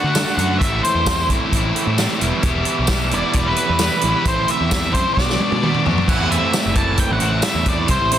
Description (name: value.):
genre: indie rock.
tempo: 132 BPM.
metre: 4/4.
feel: straight.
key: unclear.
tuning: A4 = 440 Hz.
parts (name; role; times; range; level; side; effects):
octave-fuzz lead guitar; melody; 0.0-8.2 s; B4 to A5; -21 LUFS; equal; distortion, analog delay.
biting overdriven guitar; riff; 0.0-8.2 s; A2 to F#4; -23 LUFS; left 8 dB; none.
biting overdriven guitar; riff; 0.0-8.2 s; E2 to F#4; -23 LUFS; right 6 dB; lush chorus, analog delay.
picked electric bass; bass; 0.0-8.2 s; E1 to D3; -22 LUFS; equal; none.
vintage drum kit; drums; 0.1-8.2 s; crash cymbal, hi-hat, kick drum, snare drum, tambourine, toms; -21 LUFS; equal; none.
room: small room ambience.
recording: dense, heavily limited modern master.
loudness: -15 LUFS.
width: side -10 dB against mid.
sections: 0.0-6.1 A section; 6.1-8.2 B section.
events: drum fill 5.2-6.1.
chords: 0.0 D; 0.6 Am; 2.2 Em; 4.3 Am; 5.2 Bm; 6.1 Am.